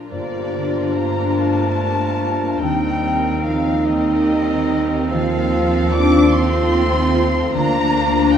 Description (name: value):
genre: classical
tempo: 49 BPM (dotted quarters)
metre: 6/8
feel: rubato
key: unclear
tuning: A4 = 437 Hz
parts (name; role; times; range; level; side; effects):
- warm studio violin section; second line; 0.0-8.4 s; Eb4 to Bb4; -29 LUFS; left 3 dB; none
- rich studio viola section; accompaniment; 0.0-8.4 s; F3 to D4; -26 LUFS; right 2 dB; none
- concert harp; arpeggios; 0.0-8.4 s; G2 to Bb4; -25 LUFS; left 7 dB; none
- warm studio violin section; melody; 0.1-8.4 s; D5 to D6; -26 LUFS; left 1 dB; none
- clear clarinet; second line; 0.1-8.4 s; C4 to D4; -27 LUFS; equal; none
- silver concert flute; second line; 0.1-8.4 s; D5 to D6; -28 LUFS; left 1 dB; none
- warm oboe; second line; 0.1-8.4 s; A4 to Bb4; -32 LUFS; right 1 dB; none
- dark bassoon; accompaniment; 0.1-8.4 s; Eb3 to F3; -27 LUFS; right 1 dB; none
- mellow French horn section; sustained chords; 0.1-8.4 s; A3 to F4; -24 LUFS; right 1 dB; none
- mellow tuba; bass; 0.1-8.4 s; G1 to Eb2; -26 LUFS; right 4 dB; none
- rich studio cello section; bass; 0.1-8.4 s; D3 to D4; -24 LUFS; left 2 dB; none
- rich studio double bass section; bass; 0.1-8.4 s; D2 to G2; -24 LUFS; right 2 dB; none
room: wet scoring stage reverb, RT60 2.2 s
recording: none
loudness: -15 LUFS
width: side -8 dB against mid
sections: 0.1-8.4 A section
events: none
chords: 0.1 Gm7; 2.6 Cm7/Eb; 5.1 F7/Eb; 7.5 Bb/D